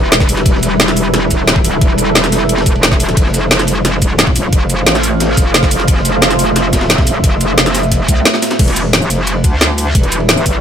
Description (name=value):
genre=dark technical drum and bass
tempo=177 BPM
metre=4/4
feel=straight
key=E phrygian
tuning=A4 = 440 Hz
part: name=deep dark ambient pad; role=sustained chords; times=0.0-10.6 s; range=G3 to F5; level=-18 LUFS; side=right 1 dB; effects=chorus, built-in reverb, sidechain pumping
part: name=metallic wobble bass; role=bass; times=0.0-10.6 s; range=E1 to D2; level=-15 LUFS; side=equal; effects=chorus, tube saturation
part: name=crunchy breakbeat drum kit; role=drums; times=0.1-10.5 s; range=ride cymbal, snare drum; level=-23 LUFS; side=left 1 dB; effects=none
part: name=drum and bass drum kit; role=drums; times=0.1-10.5 s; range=crash cymbal, hi-hat, shaker, snare drum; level=-13 LUFS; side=equal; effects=overdrive
part: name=electronic kick drum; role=drums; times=0.2-10.5 s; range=none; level=-13 LUFS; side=equal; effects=overdrive
room=little or no reverb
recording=none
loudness=-10 LUFS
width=side -8 dB against mid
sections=0.0-8.6 A section; 8.6-10.6 A section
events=drop 0.0-8.6, 8.6-10.6; band accent 8.3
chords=0.0 Em; 3.2 F; 8.6 Em